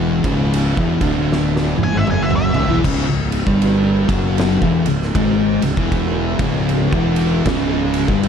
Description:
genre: stoner and doom metal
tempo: 78 BPM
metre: 4/4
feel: swing 62% on 8ths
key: C# phrygian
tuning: A4 = 443 Hz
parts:
  - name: fuzz guitar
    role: riff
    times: 0.0-8.3 s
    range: C#2 to G#3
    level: -22 LUFS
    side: equal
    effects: distortion
  - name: thick fuzz guitar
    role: riff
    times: 0.0-8.3 s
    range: C#2 to G#3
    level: -21 LUFS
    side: left 9 dB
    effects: distortion
  - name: thick fuzz guitar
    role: riff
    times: 0.0-8.3 s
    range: C#2 to G#3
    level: -22 LUFS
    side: right 10 dB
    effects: distortion
  - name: fuzz fingered electric bass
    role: bass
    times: 0.0-8.3 s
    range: C#1 to G#1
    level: -22 LUFS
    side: equal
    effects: overdrive, tube saturation
  - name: oversized low-tuned drum kit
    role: drums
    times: 0.2-8.3 s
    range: crash cymbal, kick drum, ride cymbal, snare drum, toms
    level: -21 LUFS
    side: right 1 dB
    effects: none
  - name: octave-fuzz lead guitar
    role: melody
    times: 1.8-2.8 s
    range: E5 to G#5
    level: -22 LUFS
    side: equal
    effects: distortion, slapback echo
room: studio ambience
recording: dark, warm production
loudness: -14 LUFS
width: side -7 dB against mid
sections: 0.0-2.8 A section; 2.8-8.3 B section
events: lead electric guitar solo 0.0-2.8; drum fill 1.3-2.8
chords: 0.0 C#m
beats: 0.54 1.31 2.08 | 2.85 3.61 4.38 5.15 | 5.92 6.69 7.46 8.23

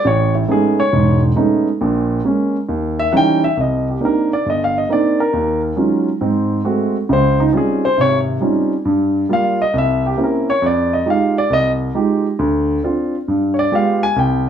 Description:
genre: solo jazz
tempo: 136 BPM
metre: 4/4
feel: swing 66% on 8ths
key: C minor from 3.6 s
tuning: A4 = 441 Hz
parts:
  - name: dark grand piano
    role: solo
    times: 0.0-14.5 s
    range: E1 to Ab5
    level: -14 LUFS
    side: right 1 dB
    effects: none
room: moderate club reverb, RT60 0.6 s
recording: small room reverb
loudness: -14 LUFS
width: side -8 dB against mid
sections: 0.0-3.6 A section; 3.6-14.5 A section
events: grand piano solo 0.0-14.5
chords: 0.0 Amaj9#11; 1.8 A#m7; 2.7 D#7b9; 3.6 Cm9; 5.3 Ebm11; 6.2 Ab7b9; 7.1 Dbmaj9#11; 8.9 Gm7; 9.7 C7b9; 10.6 Fm9; 12.4 Dm7; 13.3 G7b9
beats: | 0.04 0.48 0.92 1.36 | 1.80 2.24 2.68 3.12 | 3.56 4.01 4.45 4.89 | 5.33 5.77 6.21 6.65 | 7.09 7.53 7.97 8.41 | 8.86 9.30 9.74 10.18 | 10.62 11.06 11.50 11.95 | 12.39 12.83 13.27 13.71 | 14.16

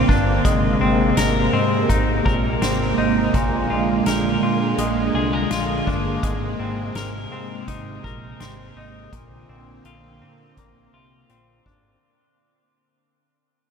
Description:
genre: dream pop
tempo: 83 BPM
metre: 4/4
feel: straight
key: unclear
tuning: A4 = 438 Hz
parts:
  - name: string machine, violas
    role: sustained chords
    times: 0.0-12.0 s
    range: C3 to C4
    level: -22 LUFS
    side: right 2 dB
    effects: phaser, ensemble chorus
  - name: semi-hollow electric guitar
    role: arpeggios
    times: 0.0-12.6 s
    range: Bb2 to Bb4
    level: -24 LUFS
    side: left 2 dB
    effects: wide subtle chorus, ping-pong delay
  - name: fat analog bass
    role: bass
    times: 0.0-12.0 s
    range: G1 to Bb2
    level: -26 LUFS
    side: equal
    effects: none
  - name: soft-mallet drum kit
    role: drums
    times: 0.1-11.8 s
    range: hi-hat, kick drum, snare drum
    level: -25 LUFS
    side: equal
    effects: none
room: wet huge ambient reverb, RT60 7.5 s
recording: dreamy mix soaked in reverb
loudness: -18 LUFS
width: side -6 dB against mid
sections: 0.0-12.0 A section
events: fade-out 0.0-12.0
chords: 0.4 Abadd9; 3.3 Bb7; 6.2 Abadd9; 9.1 Bbadd9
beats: | 0.45 1.17 1.89 2.62 | 3.34 4.06 4.79 5.51 | 6.23 6.95 7.68 8.40 | 9.12 9.85 10.57 11.29

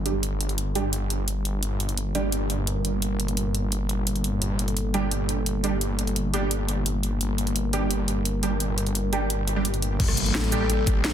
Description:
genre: dark technical drum and bass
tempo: 172 BPM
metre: 4/4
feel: straight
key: G minor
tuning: A4 = 441 Hz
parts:
  - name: dark analog pad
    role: sustained chords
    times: 0.0-11.1 s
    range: G3 to Bb4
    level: -31 LUFS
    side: left 1 dB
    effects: lush chorus, sidechain pumping
  - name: orchestra-hit-like synth stab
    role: stabs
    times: 0.0-2.8, 4.9-11.1 s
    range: G3 to G4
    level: -30 LUFS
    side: right 5 dB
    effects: built-in reverb, phaser, cassette tape, digital delay
  - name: snarling distorted saw bass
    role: bass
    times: 0.0-11.1 s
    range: G1 to A1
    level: -26 LUFS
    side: equal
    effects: distortion, tube saturation
  - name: impact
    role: sound effects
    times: 0.0-0.2, 10.0-11.1 s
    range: none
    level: -32 LUFS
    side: equal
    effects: none
  - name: drum and bass drum kit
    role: drums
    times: 0.1-11.1 s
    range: crash cymbal, hi-hat, rim click, shaker, snare drum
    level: -29 LUFS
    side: equal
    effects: overdrive
  - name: electronic kick drum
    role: drums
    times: 10.0-10.9 s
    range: none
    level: -23 LUFS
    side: equal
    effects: overdrive
room: digital ambience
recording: dense, heavily limited modern master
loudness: -23 LUFS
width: side -10 dB against mid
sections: 0.0-10.0 A section; 10.0-11.1 B section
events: impact 0.0, 10.0-11.1; filter sweep on analog synth pad 0.0-10.0; filter sweep on synth stab 0.0-10.0; drop 10.0-11.1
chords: 0.0 Gmadd9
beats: | 0.23 0.58 0.93 1.28 | 1.63 1.98 2.32 2.67 | 3.02 3.37 3.72 4.07 | 4.42 4.77 5.12 5.46 | 5.81 6.16 6.51 6.86 | 7.21 7.56 7.91 8.25 | 8.60 8.95 9.30 9.65 | 10.00 10.35 10.70 11.04

